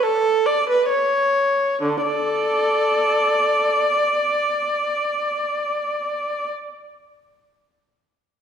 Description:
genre	classical, baroque-style suite movement for unaccompanied viola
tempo	68 BPM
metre	3/4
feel	rubato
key	unclear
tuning	A4 = 440 Hz
part	rich viola	solo	0.0-6.5 s	D3 to D5	-18 LUFS	equal	none
room	wet recital hall reverb, RT60 1.7 s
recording	heard from further back in the room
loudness	-18 LUFS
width	side -8 dB against mid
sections	0.0-1.8 A section; 1.8-7.1 B section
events	slowing down 0.0-1.8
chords	none

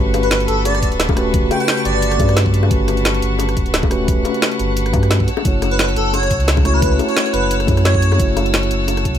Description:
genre	liquid drum and bass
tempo	175 BPM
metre	4/4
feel	swing 54% on 16ths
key	unclear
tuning	A4 = 439 Hz
part	mellow tine electric piano	accompaniment	0.0-9.2 s	C#3 to C#5	-21 LUFS	equal	medium stereo tremolo, ping-pong delay
part	rich chamber string section	sustained chords	0.0-9.2 s	B4 to E6	-25 LUFS	left 1 dB	sidechain pumping
part	sub bass with octave	bass	0.0-9.2 s	D1 to G2	-18 LUFS	equal	none
part	drum and bass drum kit	drums	0.1-9.2 s	hi-hat, rim click, snare drum	-21 LUFS	equal	overdrive
part	bongos	percussion	0.1-9.0 s	none	-26 LUFS	left 9 dB	none
part	airy dreamy lead	melody	0.2-2.3, 5.7-8.2 s	A4 to G5	-21 LUFS	equal	chorus, ping-pong delay
part	electronic kick drum	drums	0.8-9.1 s	none	-19 LUFS	equal	overdrive
room	light reverb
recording	none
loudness	-14 LUFS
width	side -10 dB against mid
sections	0.0-9.2 A section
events	none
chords	0.0 Gmaj9#11; 5.3 F#m7

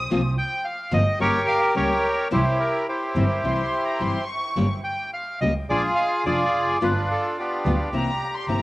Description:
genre	tango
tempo	107 BPM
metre	4/4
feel	rubato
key	unclear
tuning	A4 = 441 Hz
part	warm studio violin section	second line	0.0-8.6 s	Bb5 to Eb6	-29 LUFS	left 1 dB	cassette tape
part	dark double bass	bass	0.0-8.6 s	F1 to D2	-26 LUFS	right 1 dB	none
part	nylon-string guitar	accompaniment	0.1-8.6 s	C3 to G4	-26 LUFS	left 2 dB	cassette tape
part	bandoneon	melody	0.4-8.6 s	B3 to G5	-23 LUFS	equal	cassette tape, analog delay
room	light reverb, small room reverb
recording	home recording on cassette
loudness	-20 LUFS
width	side -18 dB against mid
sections	0.0-8.6 A section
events	none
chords	0.1 C7sus4; 1.2 Gdim; 2.3 C; 4.6 Gdim; 5.7 Bb7; 6.8 G7; 7.9 C7

